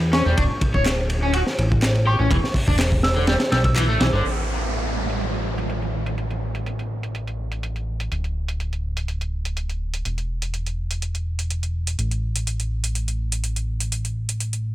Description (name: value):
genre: breakbeat, breaks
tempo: 124 BPM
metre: 4/4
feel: straight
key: unclear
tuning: A4 = 441 Hz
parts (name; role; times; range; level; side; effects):
- fat analog bass; bass; 0.0-14.7 s; D1 to E2; -23 LUFS; equal; none
- soft synth bell; melody; 0.1-3.7 s; C#6 to E6; -29 LUFS; equal; chorus, phaser, telephone sound, digital delay
- overdriven electric guitar; riff; 0.1-4.2 s; D3 to C#5; -26 LUFS; equal; digital delay
- crunchy breakbeat drum kit; drums; 0.1-4.1 s; hi-hat, kick drum, ride cymbal, snare drum; -22 LUFS; equal; none
- garage drum kit; drums; 0.9-14.6 s; handclaps, hi-hat; -29 LUFS; right 1 dB; overdrive, low-pass filter on snare, low-pass filter on hats
- downlifter; sound effects; 4.2-8.1 s; none; -29 LUFS; right 2 dB; none
room: studio reverb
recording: none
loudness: -21 LUFS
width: side -14 dB against mid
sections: 0.0-4.2 A section; 4.2-14.7 B section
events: none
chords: 0.4 D5; 2.3 Em7; 4.2 N.C.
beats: | 0.37 0.86 1.34 1.83 | 2.31 2.79 3.28 3.76 | 4.25 4.73 5.21 5.70 | 6.18 6.66 7.15 7.63 | 8.12 8.60 9.08 9.57 | 10.05 10.54 11.02 11.50 | 11.99 12.47 12.96 13.44 | 13.92 14.41